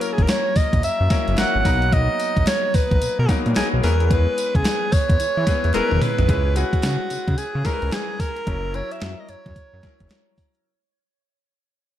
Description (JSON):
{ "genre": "R&B, new jack swing", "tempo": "110 BPM", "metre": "4/4", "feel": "swing 63% on 16ths", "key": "unclear", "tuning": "A4 = 441 Hz", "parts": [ { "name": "bright alto saxophone", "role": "melody", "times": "0.0-10.4 s", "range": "F#4 to F#5", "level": "-23 LUFS", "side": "right 1 dB", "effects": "digital delay" }, { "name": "bright grand piano", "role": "accompaniment", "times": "0.0-10.7 s", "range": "F#3 to B4", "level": "-27 LUFS", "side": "left 4 dB", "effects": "none" }, { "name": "crisp 8-bit digital drum machine", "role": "drums", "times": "0.0-10.6 s", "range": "hi-hat, kick drum, snare drum, tambourine, toms", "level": "-22 LUFS", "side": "equal", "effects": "overdrive" }, { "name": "fat analog bass", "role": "bass", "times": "0.2-10.1 s", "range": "E1 to E3", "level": "-21 LUFS", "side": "equal", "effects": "none" }, { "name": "group handclap", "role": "percussion", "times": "0.3-10.3 s", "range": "none", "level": "-42 LUFS", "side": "right 6 dB", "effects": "none" } ], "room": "light reverb", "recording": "dark, warm production", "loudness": "-18 LUFS", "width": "side -12 dB against mid", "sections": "0.0-6.3 A section; 6.3-10.7 B section", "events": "drum fill 5.7-6.3; fade-out 6.3-10.7", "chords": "0.0 F#7; 1.6 Bmaj7; 3.8 E6; 6.3 C#m7; 8.5 F#7" }